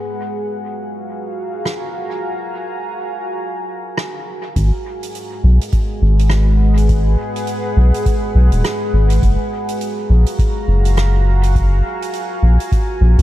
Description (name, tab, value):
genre	ambient dub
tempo	103 BPM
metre	4/4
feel	swing 60% on 16ths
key	G# dorian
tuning	A4 = 441 Hz
part	deep dark ambient pad	sustained chords	0.0-13.2 s	G#3 to A#5	-22 LUFS	equal	chorus, built-in reverb
part	soft-mallet drum kit	drums	1.7-13.2 s	hi-hat, rim click	-28 LUFS	right 2 dB	dub echo
part	round analog bass	bass	4.6-13.2 s	D#1 to C#2	-11 LUFS	equal	none
part	electronic kick drum	drums	4.6-12.9 s	none	-17 LUFS	equal	none
room	studio reverb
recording	dark, warm production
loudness	-14 LUFS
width	side -15 dB against mid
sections	0.0-4.6 A section; 4.6-13.2 B section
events	none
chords	0.0 F#maj9; 4.6 G#m7; 9.2 F#maj9